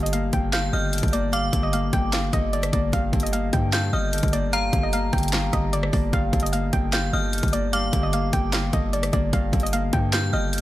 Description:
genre	hip hop, trap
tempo	150 BPM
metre	4/4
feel	half-time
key	G minor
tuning	A4 = 440 Hz
part	soft round pluck	melody	0.0-10.6 s	D5 to G5	-28 LUFS	right 2 dB	chorus, digital delay
part	Celtic harp	accompaniment	0.0-10.6 s	G2 to Bb3	-28 LUFS	left 3 dB	none
part	hard-hitting 808-style bass	bass	0.0-10.6 s	G1 to G2	-26 LUFS	equal	none
part	trap drum kit	drums	0.0-10.6 s	handclaps, hi-hat, kick drum, rim click, snare drum	-25 LUFS	equal	overdrive
part	metallic FM bell	second line	0.5-10.5 s	Bb5 to G6	-30 LUFS	left 1 dB	chorus, digital delay
room	light reverb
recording	none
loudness	-20 LUFS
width	side -15 dB against mid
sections	0.0-10.6 A section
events	none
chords	0.0 Gm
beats	0.13 0.53 0.93 | 1.33 1.73 2.13 2.53 | 2.93 3.33 3.73 4.13 | 4.53 4.93 5.33 5.73 | 6.13 6.53 6.93 7.33 | 7.73 8.13 8.53 8.93 | 9.33 9.73 10.13 10.53

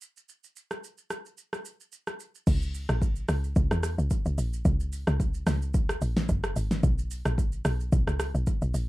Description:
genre	amapiano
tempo	110 BPM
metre	4/4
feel	swing 55% on 16ths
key	C# dorian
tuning	A4 = 436 Hz
part	deep house drum kit	drums	0.0-8.9 s	crash cymbal, hi-hat, kick drum, rim click, shaker, snare drum	-28 LUFS	equal	none
part	woody log drum bass	bass	2.5-8.9 s	F#1 to E2	-28 LUFS	equal	none
room	little or no reverb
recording	rough home demo mix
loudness	-25 LUFS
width	side -18 dB against mid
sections	0.0-2.5 A section; 2.5-8.9 B section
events	drop 2.5-8.9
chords	none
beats	| 0.29 0.83 1.38 1.93 | 2.47 3.02 3.56 4.11 | 4.65 5.20 5.74 6.29 | 6.83 7.38 7.92 8.47

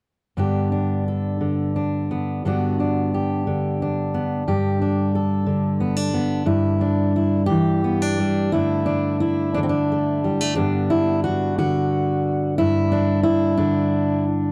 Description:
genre	folk, solo fingerstyle acoustic guitar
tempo	59 BPM (dotted quarters)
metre	6/8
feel	rubato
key	G major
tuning	A4 = 440 Hz
part	fingerpicked steel-string acoustic guitar	solo	0.4-14.5 s	G2 to A4	-21 LUFS	equal	none
room	little or no reverb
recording	dry, close 1970s-style studio recording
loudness	-21 LUFS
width	mono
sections	0.4-8.5 A section; 8.5-14.5 B section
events	none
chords	0.4 Gadd9; 2.4 D6/G; 4.5 Gadd9; 6.4 G5; 8.5 Gsus2; 10.6 D6/G; 12.6 G5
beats	| 0.36 1.40 | 2.43 3.45 | 4.45 5.45 | 6.45 7.48 | 8.52 9.56 | 10.57 11.59 | 12.59 13.58

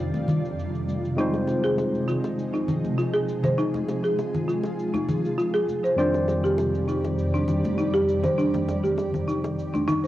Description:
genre	organic downtempo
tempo	100 BPM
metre	4/4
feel	straight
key	F dorian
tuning	A4 = 440 Hz
part	barky tine electric piano	accompaniment	0.0-10.1 s	F2 to D5	-29 LUFS	equal	cassette tape, tape echo
part	granular cloud pad	sustained chords	0.0-10.1 s	F2 to D5	-28 LUFS	equal	built-in reverb, cassette tape
part	shaker	drums	0.1-10.1 s	none	-56 LUFS	right 1 dB	low-pass filter on perc, low-pass filter on room
part	congas and bongos	percussion	0.1-10.0 s	none	-30 LUFS	left 1 dB	none
part	folk marimba with medium hard mallets	arpeggios	1.2-10.1 s	D4 to C5	-26 LUFS	equal	cassette tape, tape echo
room	moderate spring reverb, RT60 1.3 s, studio ambience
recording	home recording on cassette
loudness	-22 LUFS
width	side -14 dB against mid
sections	0.0-10.1 A section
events	none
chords	0.0 Cmadd9/F; 1.2 Fm7; 6.0 Cmadd9/F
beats	0.58 | 1.18 1.78 2.38 2.98 | 3.58 4.18 4.78 5.38 | 5.98 6.58 7.18 7.78 | 8.38 8.98 9.58

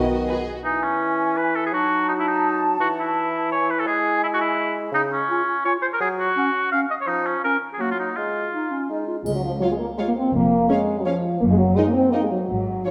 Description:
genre	cinematic, playful, whimsical film cue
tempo	168 BPM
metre	3/4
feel	straight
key	E major, Db major from 4.9 s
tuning	A4 = 440 Hz
part	warm studio violin section	melody	0.0-0.6, 9.6-12.9 s	E4 to F5	-39 LUFS	equal	none
part	warm studio violin section	second line	0.0-0.5, 9.6-12.9 s	Bb4 to D#5	-35 LUFS	equal	none
part	warm bassoon	accompaniment	0.0-9.2 s	Db3 to Ab3	-31 LUFS	equal	none
part	mellow French horn section	sustained chords	0.0-0.5, 9.2-12.9 s	F3 to F#4	-23 LUFS	equal	none
part	warm studio viola section	accompaniment	0.3-0.4, 9.6-12.9 s	Db4 to B4	-30 LUFS	equal	none
part	warm oboe	second line	0.6-8.9 s	C#4 to F5	-24 LUFS	equal	none
part	mellow clarinet	second line	0.7-9.2 s	Bb3 to F4	-31 LUFS	equal	none
part	mellow large flute ensemble	second line	0.7-9.0 s	Eb5 to A5	-30 LUFS	equal	none
part	warm studio cello section	bass	9.2-12.8 s	Db2 to Ab2	-27 LUFS	equal	none
part	warm studio double bass section	bass	9.3-12.8 s	F1 to Db2	-33 LUFS	equal	none
part	triangle	percussion	9.3-9.9 s	none	-49 LUFS	equal	none
room	wet scoring stage reverb, RT60 1.6 s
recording	dark, warm production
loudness	-22 LUFS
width	mono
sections	0.6-9.3 A section; 9.3-12.9 B section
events	none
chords	0.0 B; 0.6 E; 1.7 F#m6; 2.8 E; 3.9 E/G#; 4.9 Db; 6.0 Gb5; 7.1 Db/F; 7.8 Ebm/Gb; 8.2 Db/Ab; 9.3 Db; 10.3 Db/F; 11.4 Ebm/Gb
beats	0.28 | 0.65 1.01 1.37 | 1.73 2.08 2.44 | 2.80 3.16 3.51 | 3.87 4.22 4.58 | 4.93 5.29 5.65 | 6.00 6.36 6.72 | 7.08 7.43 7.79 | 8.16 8.53 8.89 | 9.26 9.62 9.98 | 10.34 10.70 11.05 | 11.41 11.77 12.13 | 12.49 12.85

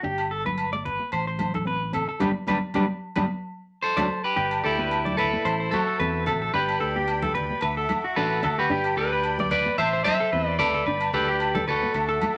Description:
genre	highlife guitar band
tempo	111 BPM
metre	4/4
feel	swing 55% on 16ths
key	G major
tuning	A4 = 439 Hz
part	nylon-string guitar	accompaniment	0.0-12.4 s	F#3 to D4	-33 LUFS	equal	none
part	clean electric guitar	arpeggios	0.0-12.3 s	D4 to D5	-30 LUFS	equal	tremolo
part	fingered electric bass	bass	0.0-12.2 s	G1 to E2	-35 LUFS	equal	none
part	agogo bells	percussion	0.2-12.4 s	none	-34 LUFS	equal	none
part	congas	percussion	0.5-12.4 s	none	-36 LUFS	equal	none
part	clean electric guitar	melody	3.8-12.4 s	E4 to E5	-27 LUFS	equal	none
part	musette accordion	sustained chords	4.4-12.4 s	B4 to D6	-40 LUFS	equal	none
room	moderate studio reverb, RT60 0.6 s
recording	none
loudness	-25 LUFS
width	mono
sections	0.0-4.4 A section; 4.4-12.4 B section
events	band accent 2.2-4.4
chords	0.0 G; 1.1 Am; 2.2 G; 3.3 D; 4.4 G; 5.5 Am; 6.5 G; 7.6 Dadd9; 8.7 G; 9.8 Am; 10.9 G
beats	| 0.04 0.59 1.13 1.67 | 2.21 2.75 3.29 3.83 | 4.38 4.92 5.46 6.00 | 6.54 7.08 7.62 8.16 | 8.71 9.25 9.79 10.33 | 10.87 11.41 11.95

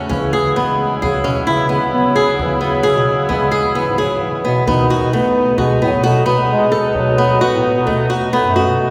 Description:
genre	contemporary instrumental, chamber music in an uneven meter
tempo	131 BPM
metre	5/4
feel	straight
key	unclear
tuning	A4 = 442 Hz
part	clear woodwind section	sustained chords	0.0-8.9 s	B2 to E4	-26 LUFS	equal	none
part	flamenco guitar	arpeggios	0.0-8.9 s	A3 to A4	-19 LUFS	equal	none
part	warm French horn	second line	0.1-8.9 s	D#3 to B3	-22 LUFS	equal	none
part	warm bass clarinet	bass	0.1-8.9 s	F#2 to B3	-22 LUFS	equal	none
part	frame drum	percussion	0.1-8.9 s	none	-32 LUFS	equal	none
room	wet cathedral reverb, RT60 6.0 s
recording	recorded in a church or concert hall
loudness	-15 LUFS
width	mono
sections	0.1-8.9 A section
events	none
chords	0.1 C#m7; 4.7 B7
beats	| 0.10 0.56 1.02 1.48 1.93 | 2.39 2.85 3.31 3.76 4.22 | 4.68 5.13 5.59 6.05 6.50 | 6.96 7.42 7.88 8.33 8.79

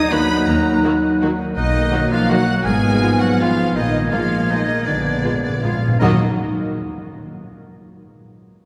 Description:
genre	classical, orchestral ballroom waltz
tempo	163 BPM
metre	3/4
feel	uneven beats, rubato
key	Eb minor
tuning	A4 = 438 Hz
part	rich symphonic violin section	melody	0.0-6.2 s	D5 to Eb6	-28 LUFS	equal	none
part	hollow concert flute	second line	0.0-6.2 s	Eb6 to Ab6	-30 LUFS	equal	none
part	mellow clarinet	second line	0.0-6.2 s	A#3 to Eb4	-30 LUFS	equal	none
part	warm oboe	second line	0.0-6.2 s	D4 to Eb5	-30 LUFS	equal	none
part	mellow French horn section	sustained chords	0.0-6.2 s	F3 to Eb4	-26 LUFS	equal	none
part	concert harp	arpeggios	0.0-6.2 s	Ab2 to Gb5	-27 LUFS	equal	none
part	rich symphonic cello section	bass	0.0-6.2 s	D3 to Cb4	-26 LUFS	equal	none
part	warm symphonic violin section	second line	0.1-6.2 s	Bb3 to Gb4	-34 LUFS	equal	none
part	rich symphonic viola section	accompaniment	0.1-6.2 s	Eb3 to Ab3	-28 LUFS	equal	none
part	rich symphonic double bass section	bass	0.5-6.2 s	Ab1 to Eb2	-27 LUFS	equal	none
part	timpani	percussion	4.9-6.2 s	Bb2 to Eb3	-25 LUFS	equal	none
room	wet church reverb, RT60 3.5 s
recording	recorded in a church or concert hall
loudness	-18 LUFS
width	mono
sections	0.0-6.0 A section; 6.0-7.1 B section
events	timpani fill 4.9-6.0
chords	0.0 Ebm; 1.6 Bmaj7; 2.7 Fdim/Ab; 3.7 Bb7sus4; 4.9 Bb7b9; 6.0 Ebm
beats	0.11 | 0.47 0.84 1.21 | 1.56 1.93 2.30 | 2.65 3.02 3.39 | 3.75 4.11 4.50 | 4.86 5.23 5.62 | 6.00

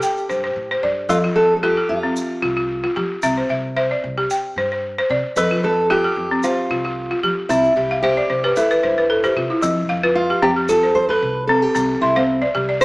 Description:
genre	west african traditional, West African string and xylophone music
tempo	113 BPM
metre	4/4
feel	straight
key	F lydian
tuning	A4 = 440 Hz
part	fingerpicked steel-string acoustic guitar	melody	0.0-12.8 s	C4 to C5	-19 LUFS	equal	none
part	balafon	arpeggios	0.0-12.8 s	F3 to C6	-18 LUFS	equal	none
part	egg shaker	percussion	0.0-12.8 s	none	-36 LUFS	right 3 dB	none
part	upright bass	bass	0.3-12.8 s	C2 to F3	-30 LUFS	equal	none
room	light reverb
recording	small speaker sound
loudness	-16 LUFS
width	side -23 dB against mid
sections	0.0-9.6 A section; 9.6-12.8 B section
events	balafon fill 7.8-9.6; steel-string acoustic guitar solo 9.6-12.8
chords	0.0 C5; 1.1 F; 3.2 C; 5.4 F; 7.5 C; 9.6 F; 11.8 C5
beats	0.03 0.56 | 1.10 1.63 2.17 2.70 | 3.23 3.77 4.30 4.83 | 5.37 5.90 6.43 6.96 | 7.50 8.03 8.56 9.10 | 9.63 10.16 10.69 11.22 | 11.75 12.28 12.81

